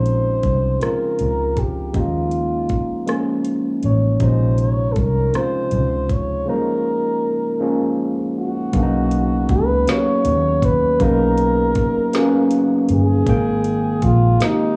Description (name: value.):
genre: slow six-eight R&B.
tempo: 53 BPM (dotted quarters).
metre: 6/8.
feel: straight.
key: unclear.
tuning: A4 = 440 Hz.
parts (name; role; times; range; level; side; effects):
mellow flugelhorn; melody; 0.0-14.8 s; Eb4 to Db5; -24 LUFS; equal; none.
barky tine electric piano; accompaniment; 0.0-14.8 s; C3 to G5; -23 LUFS; equal; overdrive, cassette tape.
vintage muted fingered electric bass; bass; 0.0-14.4 s; G1 to Eb2; -22 LUFS; equal; none.
smooth R&B drum kit; drums; 0.1-14.6 s; hi-hat, kick drum, rim click, snare drum; -26 LUFS; equal; cassette tape.
room: light reverb, digital ambience.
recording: home recording on cassette, small room reverb.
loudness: -18 LUFS.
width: mono.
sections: 0.0-8.7 A section; 8.7-14.8 B section.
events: break 6.5-8.7.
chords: 0.0 Bbm11; 1.9 Eb9sus4; 4.2 Bbm11; 6.5 Eb9sus4; 8.7 Bmaj9; 13.3 Abmaj7.